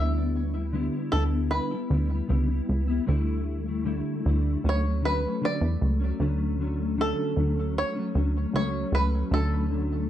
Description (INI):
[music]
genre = indie pop, bedroom pop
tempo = 77 BPM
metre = 4/4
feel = straight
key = D major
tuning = A4 = 440 Hz
[part]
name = bluegrass banjo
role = melody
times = 0.0-10.1 s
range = A4 to E5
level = -30 LUFS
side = right 2 dB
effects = wide subtle chorus, plate reverb, analog delay
[part]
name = mellow electric guitar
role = accompaniment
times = 0.0-10.1 s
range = D3 to E4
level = -29 LUFS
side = left 2 dB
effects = ensemble chorus, warbly pitch drift
[part]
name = plucky analog bass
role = bass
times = 0.0-10.1 s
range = C#2 to E2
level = -26 LUFS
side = equal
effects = none
[sound]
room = light reverb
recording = dark, warm production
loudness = -24 LUFS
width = side -11 dB against mid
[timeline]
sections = 0.0-6.2 A section; 6.2-10.1 B section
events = five-string banjo solo 0.0-6.2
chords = 0.0 Em7/D; 3.1 A7sus4/D; 4.6 Dmaj7